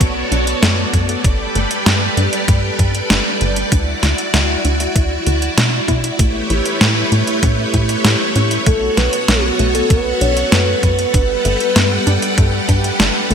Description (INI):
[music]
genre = synthwave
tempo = 97 BPM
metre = 4/4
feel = straight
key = unclear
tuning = A4 = 440 Hz
[part]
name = string machine, full ensemble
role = sustained chords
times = 0.0-13.3 s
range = G3 to F#5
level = -18 LUFS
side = equal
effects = ensemble chorus, sidechain pumping
[part]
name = wide unison pluck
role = arpeggios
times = 0.0-13.3 s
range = A3 to E4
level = -26 LUFS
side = left 3 dB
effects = digital delay
[part]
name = tight sequencer bass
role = bass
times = 0.0-13.3 s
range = G1 to B2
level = -18 LUFS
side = equal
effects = none
[part]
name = detuned 8-bit digital drum machine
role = drums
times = 0.0-13.3 s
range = hi-hat, snare drum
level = -19 LUFS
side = equal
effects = overdrive
[part]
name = electronic kick drum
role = drums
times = 0.0-12.8 s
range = none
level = -16 LUFS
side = equal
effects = overdrive
[part]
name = soft octave-layered synth lead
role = melody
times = 8.7-12.6 s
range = F#4 to C#5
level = -19 LUFS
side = equal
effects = chorus, digital delay
[sound]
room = moderate lush hall reverb, RT60 2.1 s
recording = bright 1980s-style digital production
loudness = -13 LUFS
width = side -7 dB against mid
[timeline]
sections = 0.0-13.3 A section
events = filter sweep on synth arpeggio sound 0.0-13.3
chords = 0.0 Bm7; 1.2 Gadd9; 3.7 Dadd9; 6.2 A7; 8.7 Bm7; 11.1 Gadd9